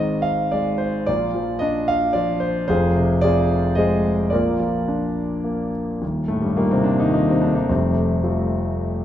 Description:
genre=classical, lyrical solo piano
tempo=110 BPM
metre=3/4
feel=rubato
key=Eb lydian from 6.0 s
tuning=A4 = 439 Hz
part: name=warm concert grand piano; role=solo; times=0.0-9.0 s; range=Eb1 to F5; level=-18 LUFS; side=equal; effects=none
room=wet recital hall reverb, RT60 1.3 s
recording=minimal, uncompressed stereo recording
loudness=-18 LUFS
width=side -11 dB against mid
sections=0.0-6.0 A section; 6.0-9.0 B section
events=none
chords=0.0 Ab; 1.1 Bb; 2.7 Fm; 4.3 Bb; 6.0 Eb; 7.7 Fadd9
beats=0.54 | 1.08 1.62 2.15 | 2.69 3.23 3.77 | 4.33 4.88 5.45 | 6.02 6.58 7.15 | 7.70 8.24 8.78

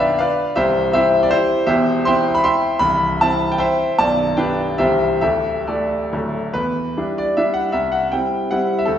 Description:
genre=classical, romantic triple-time dance for piano with dotted rhythms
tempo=124-170 BPM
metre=3/4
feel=rubato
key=unclear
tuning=A4 = 441 Hz
part: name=bright grand piano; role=solo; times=0.0-9.0 s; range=B0 to C6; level=-16 LUFS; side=equal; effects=none
room=wet scoring stage reverb, RT60 1.6 s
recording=recorded in a church or concert hall, nothing above 7.9 kHz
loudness=-16 LUFS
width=side -9 dB against mid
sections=0.0-6.6 A section; 6.6-9.0 B section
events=none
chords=0.0 G7/B; 0.6 C; 1.7 C/E; 2.8 C; 4.0 G/B; 4.8 C; 5.2 Dsus4; 6.1 D; 6.6 Em7; 7.7 C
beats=0.19 | 0.55 0.93 1.31 | 1.67 2.05 2.44 | 2.81 3.21 3.60 | 3.98 4.38 4.79 | 5.21 5.67 6.13 | 6.55 6.97 7.37 | 7.74 8.12 8.52 | 8.88

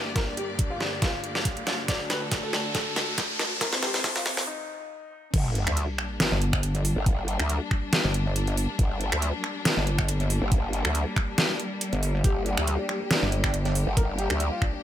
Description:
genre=heavy wobble dubstep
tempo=139 BPM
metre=4/4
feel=swing 54% on 16ths, half-time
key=G minor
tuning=A4 = 438 Hz
part: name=warm grand piano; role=melody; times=0.0-5.3, 12.2-14.8 s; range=G3 to D5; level=-34 LUFS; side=left 2 dB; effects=ping-pong delay
part: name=clear studio string section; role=sustained chords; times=0.0-14.8 s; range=D2 to D5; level=-34 LUFS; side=left 2 dB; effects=sidechain pumping
part: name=riser and sub drop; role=sound effects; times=0.3-7.1 s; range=none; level=-32 LUFS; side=equal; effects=none
part: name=dubstep drum kit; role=drums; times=0.2-14.7 s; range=crash cymbal, finger snaps, hi-hat, snare drum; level=-27 LUFS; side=equal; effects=high-pass filter on snare, high-pass filter on hats, high-pass filter on cymbals, high-pass filter on room
part: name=electronic kick drum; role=drums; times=0.2-14.7 s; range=none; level=-26 LUFS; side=equal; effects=overdrive
part: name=growl bass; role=bass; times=5.3-14.5 s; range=G1 to D2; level=-27 LUFS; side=equal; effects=chorus, overdrive
part: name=pulsing pluck wobble bass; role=bass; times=6.3-13.9 s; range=G1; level=-25 LUFS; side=equal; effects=chorus, overdrive
part: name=supersaw stab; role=stabs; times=13.4-13.7 s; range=G3 to G4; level=-36 LUFS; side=right 4 dB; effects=phaser, cassette tape, ping-pong delay
room=light reverb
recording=high-pass filter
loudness=-24 LUFS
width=side -11 dB against mid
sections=0.0-5.3 A section; 5.3-14.8 B section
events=build-up 0.0-5.3; drum fill 0.0-4.5; filter sweep 0.0-5.3; riser 0.3-4.5; break 4.5-5.3; drop 5.3-14.8; impact 5.3-7.1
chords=0.0 Gm; 1.9 D; 3.6 Fm; 5.3 Gm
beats=| 0.16 0.59 1.02 1.45 | 1.88 2.31 2.75 3.18 | 3.61 4.04 4.47 4.91 | 5.34 5.77 6.20 6.63 | 7.06 7.50 7.93 8.36 | 8.79 9.22 9.65 10.09 | 10.52 10.95 11.38 11.81 | 12.24 12.68 13.11 13.54 | 13.97 14.40

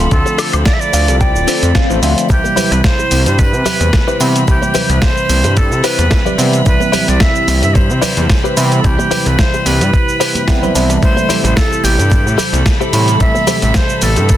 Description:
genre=nu-disco, nu disco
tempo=110 BPM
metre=4/4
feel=swing 54% on 16ths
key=C major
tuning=A4 = 438 Hz
part: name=overdriven tine electric piano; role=accompaniment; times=0.0-14.4 s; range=C3 to F4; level=-19 LUFS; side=right 1 dB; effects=phaser
part: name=rich chamber string section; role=sustained chords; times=0.0-14.4 s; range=C4 to B5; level=-25 LUFS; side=left 2 dB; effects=sidechain pumping
part: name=fat analog bass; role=bass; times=0.0-14.4 s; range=D1 to C3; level=-14 LUFS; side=equal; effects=none
part: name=breathy bright jazz flute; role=melody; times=0.1-14.4 s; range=G4 to E5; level=-18 LUFS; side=right 1 dB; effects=tape echo
part: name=dusty soul sampler-style drum kit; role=drums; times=0.1-14.4 s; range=cabasa, hi-hat, snare drum, woodblock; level=-18 LUFS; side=equal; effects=studio ambience
part: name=electronic kick drum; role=drums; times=0.1-14.4 s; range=none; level=-13 LUFS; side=equal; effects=studio ambience
part: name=direct-recorded clean electric guitar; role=riff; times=0.3-14.2 s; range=D4 to A5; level=-20 LUFS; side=left 4 dB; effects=analog chorus
part: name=swell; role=sound effects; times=1.4-2.3 s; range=none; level=-22 LUFS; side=left 5 dB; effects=none
part: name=tambourine, bongos and congas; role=percussion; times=2.3-14.4 s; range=none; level=-25 LUFS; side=right 4 dB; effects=none
room=light reverb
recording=dense, heavily limited modern master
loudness=-10 LUFS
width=side -12 dB against mid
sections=0.0-14.4 A section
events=clean electric guitar fill 0.7-2.3, 9.9-11.0; swell 1.4-2.3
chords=0.0 Dm7; 2.3 Cmaj7; 11.0 Am7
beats=| 0.12 0.66 1.21 1.75 | 2.30 2.84 3.39 3.93 | 4.48 5.02 5.57 6.12 | 6.66 7.21 7.75 8.30 | 8.84 9.39 9.93 10.48 | 11.02 11.57 12.12 12.66 | 13.21 13.75 14.30

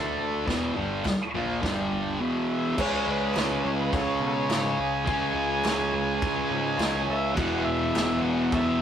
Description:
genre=garage rock duo or trio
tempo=104 BPM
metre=4/4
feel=straight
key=unclear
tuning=A4 = 440 Hz
part: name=overdriven harmonica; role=melody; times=0.0-8.8 s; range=F#4 to G#5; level=-31 LUFS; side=right 1 dB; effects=none
part: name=thick fuzz guitar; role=riff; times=0.0-8.8 s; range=E2 to D4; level=-26 LUFS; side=equal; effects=distortion
part: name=growling picked electric bass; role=bass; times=0.0-8.8 s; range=E1 to B2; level=-36 LUFS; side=left 1 dB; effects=overdrive
part: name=vintage drum kit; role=drums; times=0.2-8.7 s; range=crash cymbal, kick drum, snare drum, toms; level=-32 LUFS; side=equal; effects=none
part: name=group handclap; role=percussion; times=1.1-8.1 s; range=none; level=-40 LUFS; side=left 2 dB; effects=none
room=moderate stone room reverb, RT60 1.0 s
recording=rough rehearsal-room recording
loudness=-24 LUFS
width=side -9 dB against mid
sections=0.0-2.8 A section; 2.8-8.8 B section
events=none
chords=0.5 E5; 1.6 G5; 2.2 E5; 2.8 C#5; 7.4 E5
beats=| 0.48 1.05 1.63 2.20 | 2.78 3.35 3.93 4.50 | 5.08 5.65 6.23 6.80 | 7.37 7.95 8.52

